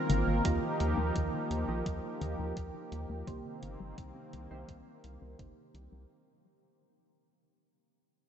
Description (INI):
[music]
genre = synthwave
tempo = 85 BPM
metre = 4/4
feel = straight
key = unclear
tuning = A4 = 440 Hz
[part]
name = warm analog pad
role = sustained chords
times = 0.0-6.1 s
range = Eb3 to Bb4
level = -36 LUFS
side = equal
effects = chorus, tremolo, sidechain pumping
[part]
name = wide unison pluck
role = arpeggios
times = 0.0-6.1 s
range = Eb3 to C4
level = -39 LUFS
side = left 2 dB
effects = none
[part]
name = round analog bass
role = bass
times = 0.1-6.1 s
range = G1 to Eb2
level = -36 LUFS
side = equal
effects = tube saturation, sidechain pumping
[part]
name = electronic hi-hat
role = drums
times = 0.1-5.9 s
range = none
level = -48 LUFS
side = right 1 dB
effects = none
[part]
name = chorused polysynth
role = stabs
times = 0.4-6.1 s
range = C3 to Eb5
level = -42 LUFS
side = right 2 dB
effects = vintage 12-bit sampler grit, analog delay
[part]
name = electronic kick drum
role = drums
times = 0.5-5.5 s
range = none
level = -38 LUFS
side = equal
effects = none
[sound]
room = moderate cathedral reverb, RT60 5.1 s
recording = dreamy mix soaked in reverb, nothing above 8.0 kHz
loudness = -31 LUFS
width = side -9 dB against mid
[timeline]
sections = 0.0-6.1 A section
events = fade-out 0.0-6.1; filter sweep on analog polysynth 0.0-6.1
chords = 0.4 Ebadd9; 3.3 Cm7